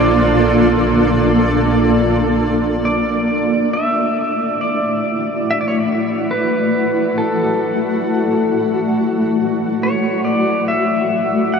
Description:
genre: ambient.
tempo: 69 BPM.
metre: 4/4.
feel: straight.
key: D major.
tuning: A4 = 444 Hz.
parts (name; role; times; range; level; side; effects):
pedal steel guitar; melody; 0.0-11.6 s; A4 to F#5; -20 LUFS; equal; shimmer reverb, ping-pong delay.
granular cloud pad; sustained chords; 0.0-11.6 s; A3 to F#5; -16 LUFS; equal; built-in reverb, shimmer reverb.
muted studio double bass section; bass; 0.0-2.8 s; Bb1; -21 LUFS; equal; none.
room: wet huge ambient reverb, RT60 7.7 s.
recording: none.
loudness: -14 LUFS.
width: side -6 dB against mid.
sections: 0.0-2.8 A section; 2.8-11.6 B section.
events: none.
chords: 0.0 Bbmaj7; 2.8 Dadd9; 9.8 F#m.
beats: 0.22 1.09 1.96 | 2.83 3.69 4.56 5.43 | 6.30 7.17 8.04 8.91 | 9.78 10.65 11.52.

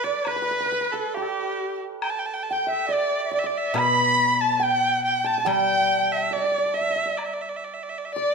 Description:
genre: chinese traditional, Chinese chamber ensemble.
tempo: 69 BPM.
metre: 2/4.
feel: straight.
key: D zhi mode.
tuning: A4 = 436 Hz.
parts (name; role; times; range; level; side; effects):
rich erhu; melody; 0.0-8.3 s; G4 to B5; -25 LUFS; right 4 dB; none.
bright reedy large dizi; second line; 0.0-8.3 s; G4 to B5; -26 LUFS; left 7 dB; none.
hammered dulcimer; second line; 0.0-8.3 s; G4 to B5; -28 LUFS; right 8 dB; none.
woodblock; percussion; 0.2-7.4 s; none; -35 LUFS; left 4 dB; none.
guzheng; accompaniment; 3.7-8.1 s; B2 to G3; -29 LUFS; left 7 dB; none.
room: moderate recital hall reverb, RT60 1.3 s.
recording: minimal, uncompressed stereo recording.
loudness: -21 LUFS.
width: side -4 dB against mid.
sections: 0.0-8.3 A section.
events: none.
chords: none.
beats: | 0.26 1.13 | 2.01 2.89 | 3.76 4.62 | 5.47 6.33 | 7.19 8.06.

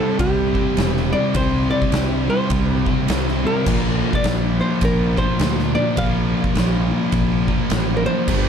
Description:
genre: stoner and doom metal.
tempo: 104 BPM.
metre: 4/4.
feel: swing 62% on 8ths.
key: unclear.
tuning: A4 = 442 Hz.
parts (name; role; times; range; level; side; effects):
archtop guitar, miked and amplified; melody; 0.0-8.5 s; G4 to F5; -24 LUFS; right 1 dB; tape echo.
bright tonewheel organ; sustained chords; 0.0-8.5 s; F4 to C6; -36 LUFS; right 2 dB; none.
heavy high-gain guitar; riff; 0.0-8.5 s; G2 to C4; -30 LUFS; equal; distortion.
thick fuzz guitar; riff; 0.0-8.5 s; G2 to C4; -24 LUFS; left 12 dB; distortion.
thick fuzz guitar; riff; 0.0-8.5 s; G2 to C4; -24 LUFS; right 11 dB; distortion.
fuzz fingered electric bass; bass; 0.2-8.5 s; E1 to D2; -23 LUFS; equal; overdrive.
oversized low-tuned drum kit; drums; 0.2-8.4 s; crash cymbal, kick drum, ride cymbal, snare drum; -23 LUFS; equal; none.
room: light reverb.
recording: dark, warm production.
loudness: -16 LUFS.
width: side -7 dB against mid.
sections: 0.0-8.5 A section.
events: none.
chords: 0.0 C; 3.7 Bb.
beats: 0.20 0.78 | 1.36 1.93 2.51 3.09 | 3.67 4.24 4.82 5.40 | 5.98 6.55 7.13 7.71 | 8.28.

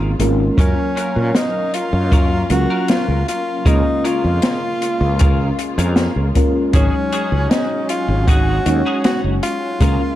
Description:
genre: vaporwave.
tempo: 78 BPM.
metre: 4/4.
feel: straight.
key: unclear.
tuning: A4 = 440 Hz.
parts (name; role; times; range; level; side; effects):
FM electric piano with soft pad layer; accompaniment; 0.0-10.2 s; Gb3 to F5; -22 LUFS; equal; tremolo, wide subtle chorus.
warm chamber string section; sustained chords; 0.0-10.2 s; Db3 to F5; -29 LUFS; equal; none.
clean electric guitar; riff; 0.0-10.0 s; Db4 to Bb4; -28 LUFS; left 1 dB; ensemble chorus, analog delay.
fretless electric bass; bass; 0.0-10.0 s; Gb1 to Bb2; -18 LUFS; equal; none.
open jazz drum kit; drums; 0.2-10.0 s; hi-hat, snare drum; -20 LUFS; left 1 dB; none.
breathy tenor saxophone; melody; 0.6-10.2 s; Db4 to Gb4; -22 LUFS; left 1 dB; tape echo.
kick drum; drums; 0.6-10.0 s; none; -15 LUFS; equal; none.
room: light reverb, studio ambience.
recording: dark, warm production.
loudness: -14 LUFS.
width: side -13 dB against mid.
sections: 0.0-10.2 A section.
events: none.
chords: 0.0 Db6; 0.6 Gbmaj7; 3.7 Db6; 6.7 Ab7sus4.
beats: | 0.58 1.35 2.12 2.89 | 3.66 4.43 5.20 5.97 | 6.74 7.50 8.27 9.04 | 9.81.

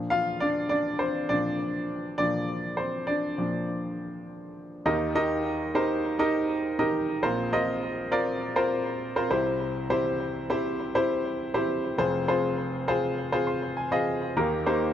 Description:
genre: pop.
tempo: 101 BPM.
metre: 4/4.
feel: straight.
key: Eb major.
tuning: A4 = 441 Hz.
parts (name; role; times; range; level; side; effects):
warm grand piano; solo; 0.0-14.9 s; F1 to C6; -25 LUFS; equal; digital delay.
room: light reverb.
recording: none.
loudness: -25 LUFS.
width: side -10 dB against mid.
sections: 0.0-4.9 A section; 4.9-14.9 B section.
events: grand piano solo 0.0-4.9; grand piano fill 13.2-14.4.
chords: 0.0 Bb; 4.9 Eb; 7.2 Bbsus2; 9.3 C; 12.0 Fm; 14.4 Eb.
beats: | 0.11 0.70 1.29 1.89 | 2.48 3.08 3.67 4.27 | 4.86 5.46 6.05 6.64 | 7.24 7.83 8.42 9.02 | 9.61 10.21 10.80 11.39 | 11.99 12.58 13.18 13.77 | 14.36.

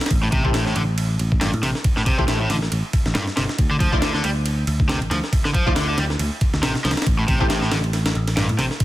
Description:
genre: breakbeat, breaks.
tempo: 138 BPM.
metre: 4/4.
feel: swing 57% on 16ths.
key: D minor.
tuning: A4 = 440 Hz.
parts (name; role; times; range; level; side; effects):
orchestra-hit-like synth stab; stabs; 0.0-8.8 s; E4 to D5; -29 LUFS; left 2 dB; built-in reverb, tape echo.
breakbeat sampler-style drum kit; drums; 0.0-8.8 s; kick drum, ride cymbal, snare drum; -21 LUFS; equal; none.
picked electric bass; bass; 0.1-8.7 s; G1 to A2; -23 LUFS; equal; none.
cranked stack guitar; riff; 0.2-8.6 s; G2 to G3; -24 LUFS; equal; overdrive, tape echo.
room: little or no reverb.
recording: dense, heavily limited modern master.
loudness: -18 LUFS.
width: side -15 dB against mid.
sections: 0.0-8.8 A section.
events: none.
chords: 0.1 Am7; 3.6 Dm9; 7.1 Am7.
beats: | 0.11 0.55 0.98 1.41 | 1.85 2.28 2.72 3.15 | 3.59 4.02 4.46 4.89 | 5.33 5.76 6.20 6.63 | 7.07 7.50 7.94 8.37 | 8.80.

